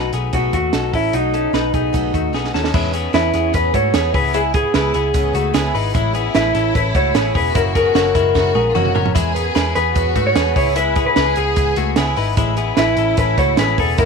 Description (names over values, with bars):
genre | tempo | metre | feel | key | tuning
jangly indie pop | 150 BPM | 4/4 | straight | E major | A4 = 439 Hz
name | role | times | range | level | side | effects
electric guitar through a small old amp | melody | 0.0-14.1 s | D#4 to C#5 | -19 LUFS | equal | tape echo
picked twelve-string acoustic guitar | accompaniment | 0.0-14.1 s | F#2 to B4 | -26 LUFS | right 13 dB | none
direct-recorded clean electric guitar | arpeggios | 0.0-14.1 s | G#3 to B4 | -23 LUFS | left 16 dB | spring reverb, tape echo
vintage muted picked electric bass | bass | 0.0-14.1 s | E1 to G#2 | -22 LUFS | left 1 dB | none
compact cocktail drum kit | drums | 0.1-14.1 s | crash cymbal, hi-hat, kick drum, snare drum, toms | -21 LUFS | right 4 dB | none
warm studio violin section | second line | 2.7-14.1 s | C#4 to G#4 | -26 LUFS | left 2 dB | none
room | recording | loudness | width
studio ambience | 1960s-style stereo with parts hard left and right | -14 LUFS | side -5 dB against mid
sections
0.0-2.7 A section; 2.7-14.1 B section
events
drum fill 2.3-2.7, 8.4-9.2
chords
0.0 B7; 2.7 E6; 4.1 C#m7; 5.9 Amaj7; 7.5 F#7; 9.2 E6; 10.6 C#m7; 12.4 Amaj7